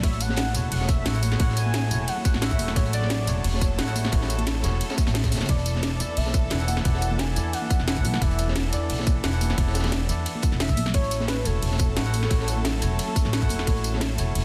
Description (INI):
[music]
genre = liquid drum and bass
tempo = 176 BPM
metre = 4/4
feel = straight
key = unclear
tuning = A4 = 440 Hz
[part]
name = warm velvety synth lead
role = melody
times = 0.0-14.4 s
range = A4 to G#5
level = -36 LUFS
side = equal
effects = chorus, delay
[part]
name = barky tine electric piano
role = accompaniment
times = 0.0-14.4 s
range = E3 to F#5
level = -36 LUFS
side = equal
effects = delay
[part]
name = clear studio string section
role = sustained chords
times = 0.0-14.4 s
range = C#3 to A4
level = -40 LUFS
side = equal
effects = none
[part]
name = upright bass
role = bass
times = 0.0-14.4 s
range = E1 to E2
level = -28 LUFS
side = equal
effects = none
[part]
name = crunchy breakbeat drum kit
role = drums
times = 0.0-14.4 s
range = hi-hat, snare drum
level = -38 LUFS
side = equal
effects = high-pass filter on hats, high-pass filter on snare, high-pass filter on room
[part]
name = drum and bass drum kit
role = drums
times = 0.0-14.4 s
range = hi-hat, ride cymbal, snare drum, tambourine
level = -32 LUFS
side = equal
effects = overdrive
[part]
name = electronic kick drum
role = drums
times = 0.0-13.7 s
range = none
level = -25 LUFS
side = equal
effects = overdrive
[part]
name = congas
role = percussion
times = 0.3-14.0 s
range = none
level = -38 LUFS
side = equal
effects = none
[sound]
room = studio reverb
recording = dense, heavily limited modern master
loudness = -24 LUFS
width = mono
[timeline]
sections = 0.0-14.4 A section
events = none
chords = 0.0 A6; 5.5 E7sus4; 10.9 A6